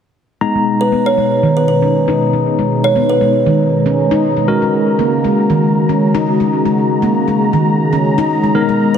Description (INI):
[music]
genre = house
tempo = 118 BPM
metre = 4/4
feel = swing 55% on 16ths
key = G# minor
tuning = A4 = 440 Hz
[part]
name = warm analog pad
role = sustained chords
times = 0.4-9.0 s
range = B2 to A#5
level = -17 LUFS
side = right 1 dB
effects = chorus
[part]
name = bright tine electric piano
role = stabs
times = 0.4-9.0 s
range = G#3 to A#5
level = -19 LUFS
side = left 1 dB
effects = medium stereo tremolo, low-pass filter, dub echo
[part]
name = handpan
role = arpeggios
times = 0.6-8.8 s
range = D#3 to D#4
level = -16 LUFS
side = left 1 dB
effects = low-pass filter, dub echo
[part]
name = kalimba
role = melody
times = 0.8-3.8, 8.9-9.0 s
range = B4 to C#5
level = -16 LUFS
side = right 2 dB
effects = dub echo
[sound]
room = wet lush hall reverb, RT60 2.2 s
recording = dense, heavily limited modern master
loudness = -11 LUFS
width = side -8 dB against mid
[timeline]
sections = 0.4-9.0 A section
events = none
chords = 0.4 G#madd9; 4.5 F#add9